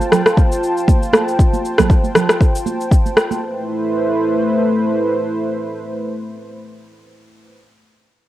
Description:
afro house; 118 BPM; 4/4; swing 55% on 16ths; A minor; A4 = 440 Hz
warm analog pad; sustained chords; 0.0-7.5 s; A3 to A5; -19 LUFS; equal; chorus, sidechain pumping
electronic cabasa and rim click; drums; 0.0-3.4 s; -15 LUFS; left 1 dB; overdrive, cassette tape
congas; percussion; 0.0-3.4 s; -22 LUFS; right 7 dB
electronic kick drum; drums; 0.4-3.0 s; -13 LUFS; equal; overdrive, cassette tape
light reverb, digital ambience; home recording on cassette; -14 LUFS; side -14 dB against mid
0.0-3.4 A section; 3.4-7.5 B section
0.0 F; 3.4 Am
0.37 0.88 | 1.39 1.90 2.40 2.91 | 3.42 3.93 4.44 4.95 | 5.46 5.96 6.47 6.98

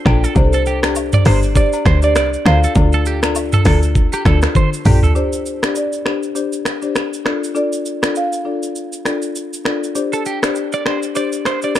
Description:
afrobeats; 100 BPM; 4/4; swing 58% on 16ths; A4 = 440 Hz
marimba with soft mallets; melody; 0.0-9.6 s; A4 to F5; -22 LUFS; right 3 dB; digital delay
marimba with medium mallets; accompaniment; 0.1-11.8 s; D4 to D5; -21 LUFS; left 5 dB
twelve-string electric guitar; riff; 0.1-5.1, 10.1-11.8 s; G4 to D5; -23 LUFS; right 6 dB; spring reverb, digital delay
woody log drum bass; bass; 0.1-5.1 s; G1 to D2; -15 LUFS; equal
afro-pop drum kit; drums; 0.1-11.8 s; finger snaps, hi-hat, kick drum, rim click, shaker, toms; -17 LUFS; equal
agogo bells and woodblock; percussion; 0.1-5.0 s; -29 LUFS; left 10 dB
digital ambience; dark, warm production; -14 LUFS; side -12 dB against mid
0.0-5.2 A section; 5.2-11.8 B section
drum fill 4.6-5.2
0.4 Csus2; 2.5 Dm; 5.2 Csus2; 7.3 Dm; 10.0 Csus2
| 0.36 0.96 1.56 2.16 | 2.76 3.36 3.96 4.56 | 5.16 5.76 6.36 6.96 | 7.56 8.16 8.76 9.36 | 9.96 10.56 11.16 11.76

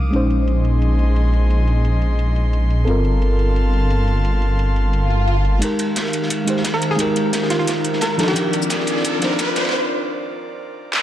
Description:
liquid drum and bass; 175 BPM; 4/4; straight; F dorian; A4 = 440 Hz
mellow FM electric piano; accompaniment; 0.0-11.0 s; F3 to C5; -22 LUFS; left 1 dB; chorus, dub echo
airy breathy pad; sustained chords; 0.0-11.0 s; Eb3 to Eb6; -26 LUFS; equal; chorus, sidechain pumping
swelling detuned saw bass; bass; 0.0-5.6 s; G1 to C2; -16 LUFS; equal
garage drum kit; drums; 0.1-11.0 s; cabasa, hi-hat, snare drum; -25 LUFS; right 1 dB; low-pass filter on hats, low-pass filter on perc, low-pass filter on snare, low-pass filter on toms
swell and riser; sound effects; 5.0-9.7 s; -26 LUFS; equal
crunchy breakbeat drum kit; drums; 5.6-9.7 s; ride cymbal, snare drum; -25 LUFS; equal; high-pass filter on cymbals, high-pass filter on snare, high-pass filter on room
electronic kick drum; drums; 5.6-9.5 s; -34 LUFS; equal
hollow square pluck; melody; 6.7-8.6 s; F4 to Bb4; -24 LUFS; right 1 dB; chorus, ping-pong delay
light reverb; dark, warm production, high-pass filter; -16 LUFS; side -12 dB against mid
0.0-5.6 A section; 5.6-11.0 B section
swell 5.0-5.6; build-up 5.6-11.0; riser 5.6-9.7; filter sweep on analog synth pad 5.6-11.0; drum fill 8.4-9.7; break 9.7-11.0
0.1 Bbm11; 2.9 Gm11; 5.6 Fm11; 8.2 Cm11
| 0.13 0.48 0.82 1.16 | 1.50 1.85 2.19 2.53 | 2.88 3.22 3.56 3.90 | 4.25 4.59 4.93 5.28 | 5.62 5.96 6.30 6.65 | 6.99 7.33 7.68 8.02 | 8.36 8.70 9.05 9.39 | 9.73 10.08 10.42 10.76

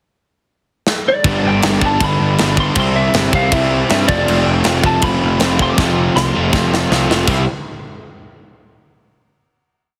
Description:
punk rock; 159 BPM; 4/4; straight; C major; A4 = 442 Hz
tight metal drum kit; drums; 0.9-7.4 s; crash cymbal, kick drum, snare drum; -21 LUFS; equal
lightly driven lead guitar; melody; 1.1-6.7 s; D5 to D6; -22 LUFS; equal; tape echo
crunchy overdriven guitar; riff; 1.2-7.4 s; G2 to F4; -21 LUFS; equal
fuzz picked electric bass; bass; 1.2-7.5 s; F1 to G2; -22 LUFS; equal; overdrive
distorted electric guitar; riff; 1.3-7.4 s; F2 to C4; -22 LUFS; equal; distortion
light reverb; heavily compressed radio sound, multiband compression; -15 LUFS; mono
0.0-1.2 pickup bar; 1.2-7.3 riff; 7.3-8.8 final chord
drum fill 0.9-1.2, 5.8-7.3
0.0 N.C.; 1.2 G; 2.8 C; 4.1 F; 7.3 C5
0.12 0.50 0.87 | 1.25 1.63 2.00 2.38 | 2.76 3.14 3.51 3.89 | 4.27 4.65 5.02 5.40 | 5.78 6.15 6.53 6.91 | 7.28

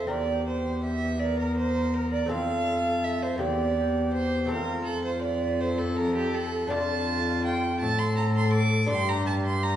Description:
classical, baroque-style sonata movement with continuo; 55 BPM (dotted quarters); 6/8; straight; F major, D minor from 6.7 s; A4 = 435 Hz
silver concert flute; melody; 0.0-9.8 s; F4 to Bb4; -34 LUFS; left 3 dB
rich violin; second line; 0.0-9.8 s; G4+20c to D6; -29 LUFS; right 4 dB
lute; accompaniment; 0.0-9.8 s; E2 to D5; -35 LUFS; left 2 dB
dark cello; bass; 0.0-9.8 s; E2 to A2; -27 LUFS; left 1 dB
wet recital hall reverb, RT60 1.5 s; heard from further back in the room, nothing above 10.8 kHz; -24 LUFS; side -11 dB against mid
0.0-9.8 A section
0.1 C7/E; 2.3 F; 3.4 C7/E; 4.5 F; 6.7 Dm/F; 8.9 G5
| 0.10 1.21 | 2.31 3.41 | 4.50 5.60 | 6.72 7.81 | 8.91

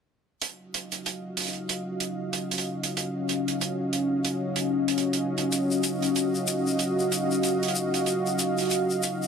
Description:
glitch hop; 94 BPM; 4/4; swing 59% on 16ths; Eb minor; A4 = 442 Hz
dark analog pad; sustained chords; 0.9-9.3 s; Db4 to F5; -26 LUFS; equal; chorus
hi-hat; drums; 0.4-9.2 s; -30 LUFS; right 5 dB
egg shaker; percussion; 5.5-9.3 s; -32 LUFS; left 5 dB
moderate plate reverb, RT60 2.1 s; dense, heavily limited modern master, lossy compression artefacts; -25 LUFS; side -6 dB against mid
0.4-9.3 A section
0.4 Ebm9
| 0.41 1.05 1.69 2.33 | 2.97 3.61 4.25 4.88 | 5.52 6.16 6.80 7.44 | 8.07 8.71

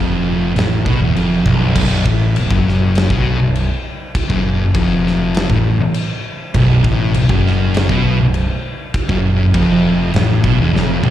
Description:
stoner and doom metal; 100 BPM; 4/4; straight; A4 = 440 Hz
thick fuzz guitar; riff; 0.0-11.1 s; B1 to B2; -15 LUFS; left 3 dB; distortion, slapback echo
thick fuzz guitar; riff; 0.0-1.8, 6.5-11.1 s; B1 to B2; -19 LUFS; right 8 dB; distortion, slapback echo
fuzz fingered electric bass; bass; 0.0-11.1 s; B0 to B1; -19 LUFS; right 1 dB; overdrive
big rock drum kit; drums; 0.6-11.1 s; crash cymbal, kick drum, snare drum, toms; -20 LUFS; right 1 dB
studio reverb; live gig heard through the venue's PA, recital hall reverb; -13 LUFS; side -12 dB against mid
0.0-1.8 A section; 1.8-11.1 B section
drum fill 10.7-11.1
0.0 B5
0.56 1.16 | 1.76 2.35 2.95 3.55 | 4.15 4.75 5.35 5.95 | 6.54 7.14 7.74 8.34 | 8.94 9.54 10.14 10.74

